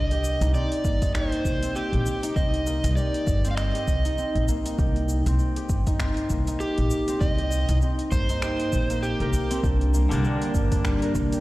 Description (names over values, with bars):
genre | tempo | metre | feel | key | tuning
organic downtempo | 99 BPM | 4/4 | swing 58% on 16ths | C minor | A4 = 440 Hz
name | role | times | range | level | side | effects
overdriven slide guitar | melody | 0.0-9.6 s | G4 to F5 | -30 LUFS | right 1 dB | tape echo
concert harp | arpeggios | 0.0-11.4 s | Bb3 to Bb4 | -29 LUFS | equal | digital delay
upright bass | bass | 0.0-11.3 s | G1 to C2 | -25 LUFS | equal | sidechain pumping
deep house drum kit | drums | 0.1-11.4 s | cabasa, finger snaps, hi-hat | -37 LUFS | equal | none
electronic kick drum | drums | 0.8-11.3 s | none | -26 LUFS | equal | none
udu | percussion | 1.1-11.0 s | none | -29 LUFS | equal | none
warm analog pad | sustained chords | 9.6-11.4 s | G3 to D5 | -31 LUFS | right 4 dB | chorus, sidechain pumping
clean electric guitar | accompaniment | 10.1-11.4 s | D3 to D4 | -32 LUFS | left 2 dB | sidechain pumping, digital delay
room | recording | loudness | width
light reverb, digital ambience | played on a big sound system in a bare room, large studio reverb | -22 LUFS | side -18 dB against mid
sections
0.0-11.4 A section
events
none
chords
0.0 Cm7; 9.6 Gm